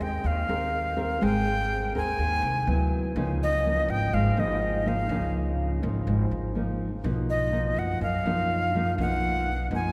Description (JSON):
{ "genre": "bossa nova", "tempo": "124 BPM", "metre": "4/4", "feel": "straight", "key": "unclear", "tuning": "A4 = 440 Hz", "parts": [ { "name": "reedy jazz flute", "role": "melody", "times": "0.0-9.9 s", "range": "D#5 to Ab5", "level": "-31 LUFS", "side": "equal", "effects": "none" }, { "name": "nylon-string guitar", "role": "accompaniment", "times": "0.0-9.9 s", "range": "F#2 to Bb4", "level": "-32 LUFS", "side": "equal", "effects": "none" }, { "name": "upright bass", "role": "bass", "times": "0.0-9.9 s", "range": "Ab1 to F#2", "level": "-31 LUFS", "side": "equal", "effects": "none" } ], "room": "wet cathedral reverb, RT60 4.8 s", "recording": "recorded in a church or concert hall", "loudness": "-26 LUFS", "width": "mono", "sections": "0.0-9.9 A section", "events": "none", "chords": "0.0 Abmaj9; 2.7 D69; 3.2 Db69; 7.0 Bmaj7#11" }